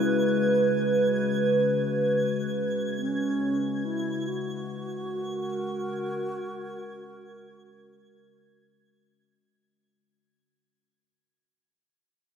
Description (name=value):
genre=ambient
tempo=free time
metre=none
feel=none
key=unclear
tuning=A4 = 441 Hz
part: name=breathy wooden-headed alto flute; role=melody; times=0.0-9.1 s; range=C#4 to F#4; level=-32 LUFS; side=right 2 dB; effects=dub echo
part: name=warbly tape-like pad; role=sustained chords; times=0.0-9.9 s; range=C#3 to B4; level=-26 LUFS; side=equal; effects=chorus, built-in reverb
part: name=twinkling granular texture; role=texture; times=0.0-10.0 s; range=G#6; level=-40 LUFS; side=right 1 dB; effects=built-in reverb
room=wet echo chamber reverb, RT60 2.8 s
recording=echo-heavy mix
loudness=-25 LUFS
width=side -8 dB against mid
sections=0.0-9.9 A section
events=fade-out 0.7-9.9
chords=0.0 C#7(no3)